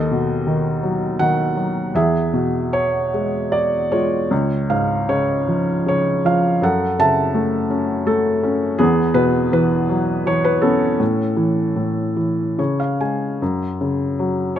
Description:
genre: classical, lyrical solo piano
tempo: 71-85 BPM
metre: 3/4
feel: rubato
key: unclear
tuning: A4 = 441 Hz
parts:
  - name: felt-muted upright piano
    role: solo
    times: 0.0-14.6 s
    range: C#2 to A5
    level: -16 LUFS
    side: equal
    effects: none
room: light reverb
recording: close, detailed microphones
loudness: -16 LUFS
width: side -10 dB against mid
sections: 0.0-13.4 A section; 13.4-14.6 B section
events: felt piano fill 12.2-13.4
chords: 0.0 B7/D#; 2.0 E; 4.3 C#; 6.6 F#m7; 8.8 Esus2; 11.0 A; 12.6 C#5; 13.4 F#5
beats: 0.47 1.20 | 1.95 2.74 3.53 | 4.31 5.09 5.87 | 6.62 7.35 8.08 | 8.80 9.52 10.27 | 11.01 11.77 12.59 | 13.41 14.19

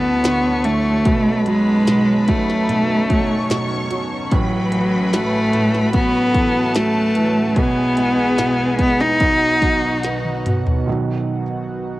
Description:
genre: pop ballad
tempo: 74 BPM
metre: 4/4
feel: straight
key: unclear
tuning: A4 = 440 Hz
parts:
  - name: clear cello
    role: melody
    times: 0.0-10.5 s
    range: F#3 to D#4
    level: -17 LUFS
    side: equal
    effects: none
  - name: clear studio violin section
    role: second line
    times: 0.0-10.8 s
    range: F#4 to C#6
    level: -28 LUFS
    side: equal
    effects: cassette tape
  - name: clear grand piano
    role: accompaniment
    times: 0.0-12.0 s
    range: A1 to B3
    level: -24 LUFS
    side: right 4 dB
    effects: cassette tape
  - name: chorused pulse-width pad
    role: sustained chords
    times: 0.0-12.0 s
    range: D2 to A5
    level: -26 LUFS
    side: left 1 dB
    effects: cassette tape
  - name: minimal click drum kit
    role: drums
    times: 0.2-10.9 s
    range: hi-hat, kick drum, snare drum, toms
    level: -21 LUFS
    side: equal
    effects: overdrive, cassette tape
room: light reverb, small room ambience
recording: home recording on cassette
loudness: -15 LUFS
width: side -17 dB against mid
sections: 0.0-10.9 A section; 10.9-12.0 B section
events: drum fill 10.0-10.9; grand piano solo 10.9-12.0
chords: 0.0 Dadd9; 1.1 B7; 4.3 A6; 7.6 E/B; 9.2 B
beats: 0.24 | 1.06 1.88 2.70 3.51 | 4.32 5.13 5.94 6.76 | 7.57 8.39 9.21 10.04 | 10.87 11.69

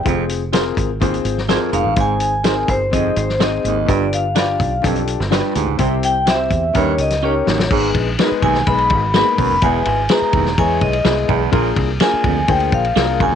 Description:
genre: uptempo 1960s-style soul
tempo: 126 BPM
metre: 4/4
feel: straight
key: unclear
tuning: A4 = 440 Hz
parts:
  - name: vibraphone with medium hard mallets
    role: melody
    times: 0.0-13.3 s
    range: C5 to B5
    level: -19 LUFS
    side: left 1 dB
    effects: none
  - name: clear concert grand piano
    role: accompaniment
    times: 0.0-13.3 s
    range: G#3 to D5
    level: -21 LUFS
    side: left 9 dB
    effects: none
  - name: fingered electric bass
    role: bass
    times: 0.0-13.3 s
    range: E1 to E2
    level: -22 LUFS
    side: right 2 dB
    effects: none
  - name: breathy baritone saxophone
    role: riff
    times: 0.1-13.3 s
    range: Eb2 to C3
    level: -22 LUFS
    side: right 13 dB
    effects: none
  - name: warm soul drum kit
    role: drums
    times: 0.1-13.3 s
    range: crash cymbal, hi-hat, kick drum, ride cymbal, snare drum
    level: -20 LUFS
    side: left 2 dB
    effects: vintage 12-bit sampler grit
  - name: electric guitar through a small old amp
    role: stabs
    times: 0.5-13.1 s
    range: D4 to Db5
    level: -22 LUFS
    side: right 14 dB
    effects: tremolo
room: light reverb, small room reverb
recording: 1960s-style stereo with parts hard left and right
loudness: -14 LUFS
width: side -8 dB against mid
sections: 0.0-7.7 A section; 7.7-13.3 B section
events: vibraphone solo 0.0-7.7; drum fill 7.2-7.7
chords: 0.1 Fm; 2.0 Ab; 3.9 G7; 5.8 C; 6.8 Eb7; 7.7 G#m; 9.6 E; 11.5 A#7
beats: | 0.05 0.53 1.01 1.49 | 1.97 2.45 2.93 3.40 | 3.88 4.36 4.84 5.32 | 5.80 6.28 6.75 7.23 | 7.71 8.19 8.66 9.14 | 9.62 10.10 10.57 11.05 | 11.53 12.01 12.48 12.96

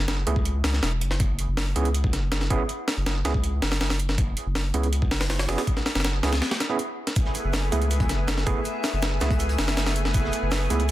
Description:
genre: drum and bass, jungle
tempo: 161 BPM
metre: 4/4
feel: straight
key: F# minor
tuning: A4 = 440 Hz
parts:
  - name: saturated sub bass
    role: bass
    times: 0.0-10.9 s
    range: E1 to C#2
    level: -25 LUFS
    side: equal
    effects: none
  - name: breakbeat sampler-style drum kit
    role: drums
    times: 0.1-10.9 s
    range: hi-hat, kick drum, snare drum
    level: -26 LUFS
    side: equal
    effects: none
  - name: overdriven tine electric piano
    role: stabs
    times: 0.3-10.8 s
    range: A3 to G#4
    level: -31 LUFS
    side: right 4 dB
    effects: medium tremolo, dub echo
  - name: lush unison pad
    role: sustained chords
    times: 7.2-10.9 s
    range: A3 to G#4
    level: -30 LUFS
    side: equal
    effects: chorus, vintage 12-bit sampler grit
  - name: crunchy breakbeat drum kit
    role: drums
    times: 7.2-10.9 s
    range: hi-hat, shaker, snare drum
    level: -40 LUFS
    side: right 3 dB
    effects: none
  - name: backwards swelling texture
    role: texture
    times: 8.1-10.9 s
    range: E5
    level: -37 LUFS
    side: left 4 dB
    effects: built-in reverb
room: small room ambience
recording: dense, heavily limited modern master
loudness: -22 LUFS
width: side -15 dB against mid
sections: 0.0-10.9 A section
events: break 6.4-7.2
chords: 0.0 F#7(no3); 1.2 N.C.; 7.2 F#m11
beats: 0.08 0.45 0.83 | 1.20 1.57 1.95 2.32 | 2.69 3.06 3.44 3.81 | 4.18 4.55 4.93 5.30 | 5.67 6.04 6.42 6.79 | 7.16 7.54 7.91 8.28 | 8.65 9.03 9.40 9.77 | 10.14 10.52 10.89

